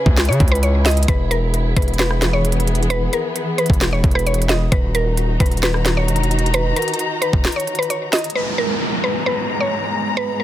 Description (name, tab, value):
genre	hip hop, trap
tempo	132 BPM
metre	4/4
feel	half-time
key	G# minor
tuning	A4 = 441 Hz
part	mallet-like synth pluck	melody	0.0-10.4 s	A#4 to D#5	-22 LUFS	equal	chorus, low-pass filter, ping-pong delay
part	warm studio string section	sustained chords	0.0-10.4 s	G#2 to A#5	-24 LUFS	left 1 dB	none
part	distorted 808-style bass	bass	0.1-7.4 s	D#1 to C#3	-18 LUFS	equal	distortion
part	trap drum kit	drums	0.1-8.4 s	hi-hat, kick drum, rim click, snare drum	-19 LUFS	equal	none
part	downlifter	sound effects	8.4-10.4 s	none	-23 LUFS	right 1 dB	none
room	little or no reverb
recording	dense, heavily limited modern master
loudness	-16 LUFS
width	side -12 dB against mid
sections	0.0-8.4 A section; 8.4-10.4 B section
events	kick muted 7.4-8.4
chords	0.0 C#m; 1.1 E; 4.7 D#m; 8.4 G#madd9